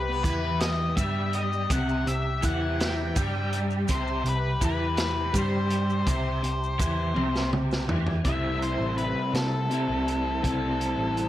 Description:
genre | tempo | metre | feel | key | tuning
psychedelic rock | 55 BPM (dotted quarters) | 6/8 | straight | unclear | A4 = 439 Hz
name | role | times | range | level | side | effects
octave-fuzz lead guitar | melody | 0.0-11.3 s | A4 to G5 | -31 LUFS | left 3 dB | distortion
overdriven combo organ | sustained chords | 0.0-11.3 s | G3 to G4 | -39 LUFS | right 4 dB | none
raw garage guitar | riff | 0.0-11.3 s | C3 to E4 | -29 LUFS | equal | overdrive, rotary speaker
hollow-body short-scale picked electric bass | bass | 0.0-11.3 s | A1 to C3 | -30 LUFS | equal | none
tanpura | drone | 0.0-11.3 s | B2 to B3 | -42 LUFS | right 1 dB | none
crunchy breakbeat drum kit | drums | 0.2-11.3 s | hi-hat, kick drum, snare drum, toms | -30 LUFS | equal | none
maracas | percussion | 0.3-7.8 s | none | -41 LUFS | right 6 dB | none
room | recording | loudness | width
light reverb | none | -24 LUFS | side -13 dB against mid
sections
0.0-8.2 A section; 8.2-11.3 B section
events
drum fill 7.2-8.2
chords
0.0 C5; 8.2 C6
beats
0.61 | 1.70 2.79 | 3.88 4.97 | 6.06 7.16 | 8.25 9.34 | 10.44

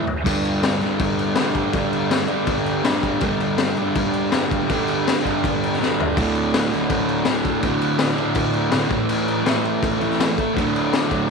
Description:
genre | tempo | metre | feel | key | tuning
garage rock duo or trio | 163 BPM | 4/4 | straight | unclear | A4 = 441 Hz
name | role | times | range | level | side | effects
fuzz guitar | riff | 0.0-11.3 s | D2 to A3 | -20 LUFS | right 2 dB | distortion
raw garage drum kit | drums | 0.1-11.2 s | crash cymbal, kick drum, snare drum, toms | -22 LUFS | left 4 dB | none
room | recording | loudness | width
moderate echo chamber reverb, RT60 1.6 s, small room ambience | 1960s-style stereo | -18 LUFS | side -4 dB against mid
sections
0.3-11.3 A section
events
drum fill 0.0, 5.8-6.2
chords
0.3 G5; 6.2 D5; 8.9 A5; 10.6 D5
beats
| 0.25 0.62 0.99 1.36 | 1.73 2.10 2.47 2.84 | 3.21 3.58 3.95 4.32 | 4.68 5.05 5.42 5.79 | 6.16 6.52 6.89 7.26 | 7.63 7.99 8.36 8.73 | 9.10 9.46 9.83 10.20 | 10.56 10.93 11.30

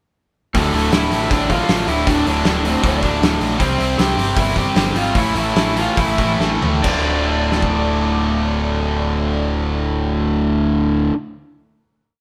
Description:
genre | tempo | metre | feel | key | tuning
punk rock | 134-158 BPM | 4/4 | straight | D minor | A4 = 440 Hz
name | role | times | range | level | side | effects
lead guitar through a small cranked amp | melody | 0.5-11.1 s | A3 to G5 | -25 LUFS | equal | overdrive
distorted electric guitar | riff | 0.5-11.2 s | D2 to C4 | -25 LUFS | equal | overdrive
distorted electric guitar | riff | 0.5-11.2 s | D2 to F4 | -23 LUFS | equal | overdrive
overdriven picked electric bass | bass | 0.5-11.1 s | D1 to D2 | -25 LUFS | equal | none
loose indie drum kit | drums | 0.5-7.7 s | crash cymbal, hi-hat, kick drum, snare drum, toms | -22 LUFS | equal | none
room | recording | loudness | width
light reverb | band playing live in one room | -18 LUFS | mono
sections
0.6-6.8 verse; 6.8-10.4 final chord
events
slowing down 3.6-6.8; drum fill 6.4-6.8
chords
0.6 Dm; 3.6 C; 5.2 A5; 6.8 Dm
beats
| 0.55 0.93 1.31 1.69 | 2.07 2.45 2.83 3.21 | 3.60 3.98 4.36 4.75 | 5.15 5.56 5.97 6.40 | 6.84 7.29 7.74 8.19 | 8.63 9.08 9.53 9.98

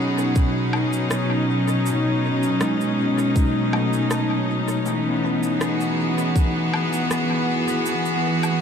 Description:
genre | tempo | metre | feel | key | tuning
ambient dub | 80 BPM | 4/4 | straight | B mixolydian | A4 = 440 Hz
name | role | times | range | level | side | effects
rich chamber string section | sustained chords | 0.0-8.6 s | B2 to G#4 | -20 LUFS | left 1 dB | none
kalimba | arpeggios | 0.0-5.7 s | G#3 to B5 | -30 LUFS | right 1 dB | ping-pong delay
electronic cabasa, woodblock and rim click | drums | 0.2-8.6 s | none | -32 LUFS | equal | studio reverb, dub echo
electronic kick drum | drums | 0.4-6.5 s | none | -18 LUFS | equal | studio reverb
room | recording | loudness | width
wet huge ambient reverb, RT60 8.2 s | dreamy mix soaked in reverb | -19 LUFS | side -7 dB against mid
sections
0.0-8.6 A section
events
none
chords
0.0 B13; 4.9 Emaj7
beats
0.36 1.11 | 1.86 2.61 3.36 4.11 | 4.86 5.61 6.36 7.11 | 7.86 8.61

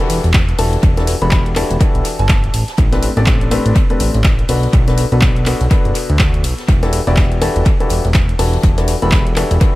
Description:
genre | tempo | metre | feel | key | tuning
piano house | 123 BPM | 4/4 | swing 59% on 16ths | E minor | A4 = 440 Hz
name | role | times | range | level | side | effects
warm concert grand piano | riff | 0.0-9.8 s | A2 to D5 | -20 LUFS | left 2 dB | sidechain pumping, dub echo
house drum kit | drums | 0.0-9.7 s | handclaps, hi-hat, ride cymbal | -23 LUFS | equal | dub echo
downlifter | sound effects | 0.0-2.8 s | none | -38 LUFS | left 1 dB | none
fat analog bass | bass | 0.1-9.6 s | E1 to D2 | -16 LUFS | equal | tube saturation, sidechain pumping
open jazz drum kit | drums | 0.1-9.7 s | hi-hat, snare drum | -33 LUFS | left 2 dB | none
electronic kick drum | drums | 0.3-9.7 s | none | -14 LUFS | equal | overdrive
soft synth bell | melody | 0.6-2.6, 8.4-9.2 s | A5 to B5 | -27 LUFS | equal | chorus, phaser, dub echo
room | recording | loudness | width
small room ambience | echo-heavy mix | -12 LUFS | side -18 dB against mid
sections
0.0-9.8 A section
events
none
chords
0.0 Em11; 2.5 Am11; 4.5 Bm7; 6.7 Em11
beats
0.34 | 0.83 1.32 1.81 2.29 | 2.78 3.27 3.76 4.25 | 4.73 5.22 5.71 6.20 | 6.68 7.17 7.66 8.15 | 8.64 9.12 9.61

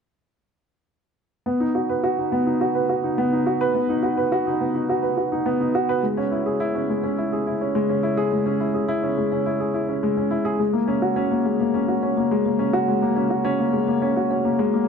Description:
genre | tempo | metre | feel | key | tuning
electronica | 105 BPM | 4/4 | straight | B major | A4 = 440 Hz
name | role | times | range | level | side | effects
warm baby grand piano | riff | 1.5-14.9 s | G#3 to B4 | -20 LUFS | equal | ping-pong delay
room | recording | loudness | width
moderate huge ambient reverb, RT60 8.7 s | none | -20 LUFS | side -6 dB against mid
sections
1.5-14.9 A section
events
none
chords
none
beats
| 1.46 2.03 2.60 3.17 | 3.74 4.31 4.88 5.46 | 6.03 6.60 7.17 7.74 | 8.31 8.88 9.46 10.03 | 10.60 11.17 11.74 12.31 | 12.88 13.46 14.03 14.60

